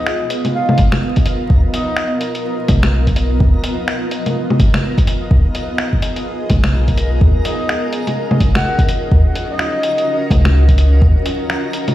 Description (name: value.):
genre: future garage.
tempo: 126 BPM.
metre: 4/4.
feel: swing 60% on 16ths.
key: unclear.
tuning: A4 = 443 Hz.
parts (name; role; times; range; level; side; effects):
breathy flute-like synth lead; melody; 0.0-2.1, 7.5-10.2 s; Eb5 to Gb5; -23 LUFS; left 1 dB; wide subtle chorus, cassette tape, tape echo.
granular cloud pad; sustained chords; 0.0-11.9 s; Cb4 to Eb5; -22 LUFS; equal; built-in reverb, sidechain pumping.
backwards swelling texture; texture; 1.0-11.9 s; Bb4; -29 LUFS; left 1 dB; built-in reverb.
lo-fi sampler-style drum kit; drums; 0.1-11.9 s; bongos, finger snaps, hi-hat; -19 LUFS; left 1 dB; none.
soft dub sub bass; bass; 0.8-11.2 s; Ab1 to Eb2; -12 LUFS; equal; sidechain pumping.
electronic kick drum; drums; 0.8-11.1 s; none; -15 LUFS; equal; none.
room: light reverb.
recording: played on a big sound system in a bare room, stone room reverb, vinyl crackle.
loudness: -13 LUFS.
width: side -14 dB against mid.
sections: 0.0-11.9 A section.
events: none.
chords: 0.0 Db13 (rootless); 7.2 Ebm9.